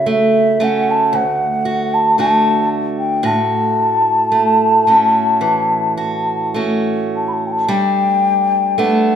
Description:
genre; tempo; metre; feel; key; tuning
celtic folk, Celtic slow air; 52-57 BPM; 4/4; rubato; A mixolydian; A4 = 441 Hz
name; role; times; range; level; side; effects
mellow hollow wooden flute; melody; 0.0-9.2 s; E5 to B5; -14 LUFS; left 2 dB; none
picked old ladder-braced acoustic guitar; accompaniment; 0.0-9.2 s; D2 to F#4; -18 LUFS; right 3 dB; none
room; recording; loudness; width
moderate recital hall reverb, RT60 1.4 s; minimal, uncompressed stereo recording; -13 LUFS; side -8 dB against mid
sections
0.0-7.7 A section; 7.7-9.2 B section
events
none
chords
0.0 A6/C#; 1.1 D; 3.2 A6; 7.7 Gadd9

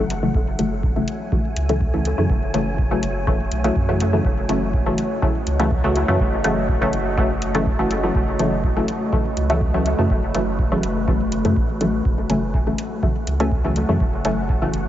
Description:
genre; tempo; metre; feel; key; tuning
dub techno; 123 BPM; 4/4; straight; F# dorian; A4 = 440 Hz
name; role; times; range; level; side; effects
deep dark ambient pad; sustained chords; 0.1-14.9 s; A3 to E5; -28 LUFS; equal; chorus, built-in reverb, sidechain pumping
filtered dub chord stab; stabs; 0.0-14.8 s; C#3 to A3; -22 LUFS; left 1 dB; chorus, phaser, sidechain pumping, dub echo
round analog bass; bass; 0.0-14.9 s; F#1 to F#2; -25 LUFS; equal; sidechain pumping
wind-like tuned noise texture; texture; 0.0-14.9 s; F#4 to G#5; -34 LUFS; right 2 dB; built-in reverb, sidechain pumping
electronic hi-hat; drums; 0.1-14.8 s; none; -31 LUFS; left 1 dB; overdrive
electronic kick drum; drums; 0.3-14.6 s; none; -22 LUFS; equal; none
warbly dusty pluck; riff; 12.3-14.4 s; A4 to G#5; -32 LUFS; right 1 dB; chorus, sidechain pumping, dub echo
room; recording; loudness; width
moderate huge ambient reverb, RT60 7.3 s; dreamy mix soaked in reverb, nothing above 7.7 kHz; -18 LUFS; side -12 dB against mid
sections
0.0-14.9 A section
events
none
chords
0.0 F#m7

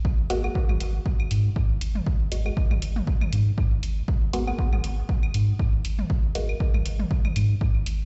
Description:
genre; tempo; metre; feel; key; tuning
dub techno; 119 BPM; 4/4; swing 56% on 16ths; G# minor; A4 = 441 Hz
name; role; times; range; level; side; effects
electronic kick drum; drums; 0.0-7.7 s; none; -27 LUFS; equal; none
filtered dub chord stab; stabs; 0.3-6.4 s; G#3 to F#4; -35 LUFS; equal; phaser, sidechain pumping, dub echo
pure sine sub bass; bass; 0.3-8.1 s; G#1 to G#2; -27 LUFS; equal; sidechain pumping
electronic hi-hat; drums; 0.3-8.0 s; none; -40 LUFS; equal; none
electronic claves and toms; percussion; 0.4-7.5 s; none; -38 LUFS; equal; sidechain pumping on perc, sidechain pumping on toms, dub echo
room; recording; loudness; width
digital ambience; played on a big sound system in a bare room, large studio reverb, nothing above 7.9 kHz; -24 LUFS; mono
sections
0.0-8.1 A section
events
none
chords
none

